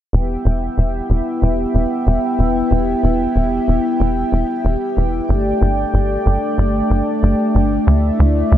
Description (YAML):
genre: synthwave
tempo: 93 BPM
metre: 4/4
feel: straight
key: E minor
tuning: A4 = 440 Hz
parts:
  - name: chorused pulse-width pad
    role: sustained chords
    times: 0.1-8.6 s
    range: A3 to G5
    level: -18 LUFS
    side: equal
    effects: none
  - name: tight sequencer bass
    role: bass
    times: 0.1-8.6 s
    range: E1 to D2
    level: -16 LUFS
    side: equal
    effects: tube saturation
room: moderate plate reverb, RT60 2.5 s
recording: bright 1980s-style digital production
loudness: -15 LUFS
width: side -11 dB against mid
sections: 0.1-8.6 A section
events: filter sweep on analog synth bass 0.1-8.6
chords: 0.1 Em; 5.3 Gsus2; 7.9 Dsus2